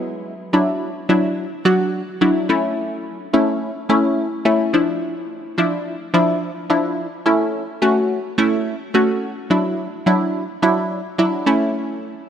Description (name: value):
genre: pop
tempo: 107 BPM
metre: 4/4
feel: straight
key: unclear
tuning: A4 = 442 Hz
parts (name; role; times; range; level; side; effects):
- punchy chord stab; solo; 0.0-12.1 s; F3 to F#4; -17 LUFS; equal; chorus
room: moderate lush hall reverb, RT60 3.1 s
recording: none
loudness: -17 LUFS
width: side -9 dB against mid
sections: 0.5-12.3 A section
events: none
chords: 0.0 Eadd9; 0.5 Dadd9; 2.5 A; 4.7 Dmadd9; 7.3 A; 9.5 Dadd9; 11.5 A